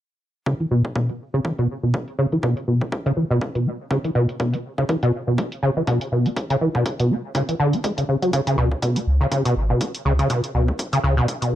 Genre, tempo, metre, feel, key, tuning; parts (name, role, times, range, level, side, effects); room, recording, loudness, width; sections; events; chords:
acid house; 122 BPM; 4/4; swing 56% on 16ths; C# phrygian; A4 = 440 Hz
deep acid bass; riff; 0.5-11.6 s; B2 to C#4; -20 LUFS; equal; ensemble chorus, sidechain pumping, dub echo
electronic hi-hat; drums; 0.5-11.5 s; -34 LUFS; right 1 dB; low-pass filter on hats
electronic kick drum; drums; 0.5-11.4 s; -29 LUFS; equal; high-pass filter on kick
warm sub bass; bass; 8.6-11.6 s; G#1 to C#2; -20 LUFS; equal; tube saturation, sidechain pumping
moderate studio reverb, RT60 0.6 s; -19 LUFS; side -12 dB against mid
0.5-11.6 A section
filter sweep on drum 0.5-11.6; filter sweep on acid bass 0.5-11.6
0.5 C#5